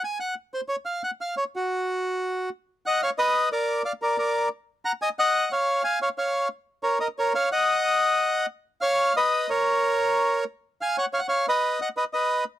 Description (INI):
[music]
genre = tango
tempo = 181 BPM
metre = 3/4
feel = rubato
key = unclear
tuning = A4 = 440 Hz
[part]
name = bandoneon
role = solo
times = 0.0-12.4 s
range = F#4 to A#5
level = -22 LUFS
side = equal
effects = none
[sound]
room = little or no reverb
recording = dry, close 1970s-style studio recording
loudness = -23 LUFS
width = side -12 dB against mid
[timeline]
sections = 0.0-2.7 A section; 2.7-12.6 B section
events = none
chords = 0.0 N.C.; 2.7 A#madd11; 3.7 A#; 4.7 D#m; 5.7 C#; 6.7 A#m; 7.7 N.C.; 8.7 C#7; 9.6 A#madd11; 11.6 B